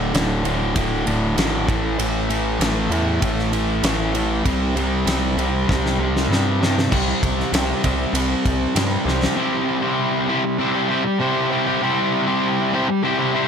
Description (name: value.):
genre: quiet-loud alternative rock.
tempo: 98 BPM.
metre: 4/4.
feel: straight.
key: unclear.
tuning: A4 = 439 Hz.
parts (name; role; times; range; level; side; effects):
distorted electric guitar; riff; 0.0-13.5 s; D2 to C5; -19 LUFS; equal; distortion.
gritty driven synth bass; bass; 0.0-9.3 s; D1 to G2; -24 LUFS; equal; none.
big rock drum kit; drums; 0.1-9.4 s; crash cymbal, kick drum, ride cymbal, snare drum; -24 LUFS; equal; none.
room: light reverb, small room ambience.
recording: none.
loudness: -18 LUFS.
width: side -7 dB against mid.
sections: 0.0-6.9 A section; 6.9-9.4 B section; 9.4-13.5 C section.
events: drum fill 5.7-6.9, 9.1-9.4.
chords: 0.0 D5; 1.7 A5; 4.5 C5; 9.4 C.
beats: 0.14 0.76 1.38 | 1.99 2.61 3.22 3.84 | 4.45 5.07 5.68 6.30 | 6.91 7.53 8.14 8.76 | 9.37 9.98 10.60 11.21 | 11.82 12.44 13.05.